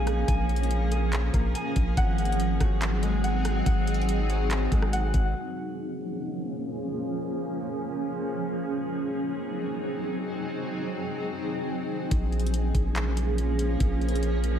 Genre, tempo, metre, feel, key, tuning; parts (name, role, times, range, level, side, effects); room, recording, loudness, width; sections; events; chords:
hip hop, atmospheric cloud-rap; 142 BPM; 4/4; half-time; Bb minor; A4 = 440 Hz
granular cloud pad; sustained chords; 0.0-14.6 s; F3 to Ab4; -29 LUFS; equal; built-in reverb, sidechain pumping, low-pass filter
concert harp; arpeggios; 0.0-6.7 s; Ab3 to Ab5; -34 LUFS; left 2 dB; ping-pong delay
long sustained 808-style bass; bass; 0.0-5.3, 12.1-14.6 s; Ab1 to Bb1; -26 LUFS; equal
trap drum kit; drums; 0.1-5.2, 12.1-14.5 s; handclaps, hi-hat, kick drum, rim click; -28 LUFS; equal
moderate lush hall reverb, RT60 1.5 s; dreamy mix soaked in reverb; -25 LUFS; side -9 dB against mid
0.0-5.4 A section; 5.4-12.1 B section; 12.1-14.6 C section
filter sweep on ambient pad 5.4-12.1
0.0 Bbm7; 2.0 Ab7; 5.4 Bbm7; 8.7 Ab7; 12.1 Bbm7